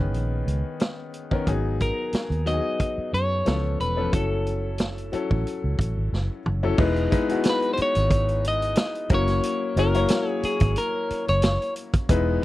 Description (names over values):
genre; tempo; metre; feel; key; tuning
lush 1970s-style soul; 90 BPM; 4/4; swing 54% on 16ths; unclear; A4 = 442 Hz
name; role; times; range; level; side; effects
clean electric guitar; melody; 0.0-11.7 s; G#4 to D#5; -26 LUFS; equal; harmonic tremolo
clear grand piano; accompaniment; 0.0-12.4 s; D#3 to C#5; -27 LUFS; left 4 dB; none
vintage muted fingered electric bass; bass; 0.0-12.4 s; E1 to F#2; -25 LUFS; right 1 dB; none
vintage drum kit; drums; 0.1-12.3 s; crash cymbal, hi-hat, kick drum, snare drum, toms; -25 LUFS; right 1 dB; none
room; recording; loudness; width
little or no reverb; dry, close 1970s-style studio recording; -21 LUFS; side -16 dB against mid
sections
0.0-6.8 A section; 6.8-12.4 B section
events
drum fill 6.1-6.8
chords
0.0 Bmaj9; 1.5 G#m7; 3.5 C#7alt; 4.1 F#m7; 6.8 Emaj7; 9.1 F#7